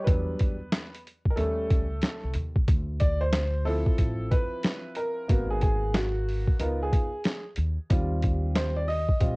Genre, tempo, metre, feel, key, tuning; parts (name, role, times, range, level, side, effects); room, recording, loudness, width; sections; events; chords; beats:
hip hop, jazz-hop; 92 BPM; 4/4; swing 64% on 16ths; A4 = 440 Hz
clear upright piano; accompaniment; 0.0-9.4 s; F3 to Eb5; -30 LUFS; equal
upright bass; bass; 0.1-9.4 s; G#1 to E2; -29 LUFS; equal
boom bap sampler-style drum kit; drums; 0.1-9.4 s; hi-hat, kick drum, snare drum; -25 LUFS; equal; cassette tape
light reverb; home recording on cassette; -24 LUFS; side -27 dB against mid
0.0-2.7 A section; 2.7-9.4 B section
upright piano solo 0.0-2.7, 2.7-9.4
0.1 Em7; 1.4 Eb7#11; 2.7 Dm9; 5.3 G#m7; 6.6 C#9; 7.9 Eb6
| 0.07 0.73 1.38 2.03 | 2.68 3.33 3.99 4.64 | 5.29 5.94 6.60 7.25 | 7.90 8.55 9.21